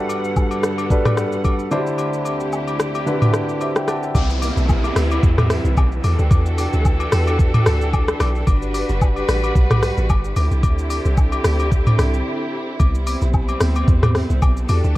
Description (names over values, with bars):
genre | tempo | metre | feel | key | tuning
amapiano | 111 BPM | 4/4 | swing 55% on 16ths | unclear | A4 = 440 Hz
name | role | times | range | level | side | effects
warm concert grand piano | accompaniment | 0.0-4.3 s | D3 to A5 | -22 LUFS | equal | none
warm studio string section | sustained chords | 0.0-15.0 s | D2 to F#5 | -24 LUFS | equal | sidechain pumping
smooth R&B drum kit | drums | 0.1-15.0 s | hi-hat, kick drum, rim click, shaker, toms | -18 LUFS | equal | none
agogo bells and woodblock | percussion | 0.1-15.0 s | none | -29 LUFS | left 4 dB | none
deep log drum bass | bass | 4.1-14.9 s | F#1 to E2 | -19 LUFS | equal | none
downlifter | sound effects | 4.2-8.5 s | none | -30 LUFS | equal | none
room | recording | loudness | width
little or no reverb | worn, warbling old tape, cassette tape, warbly pitch drift | -16 LUFS | side -17 dB against mid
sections
0.0-4.1 A section; 4.1-15.0 B section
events
kick muted 2.0-4.1; drop 4.1-15.0; break 12.3-12.8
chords
0.0 Gmaj7; 1.7 D9sus4; 4.1 Cmaj7; 6.0 Em11; 8.5 Gmaj7; 10.4 D9sus4; 12.8 Cmaj7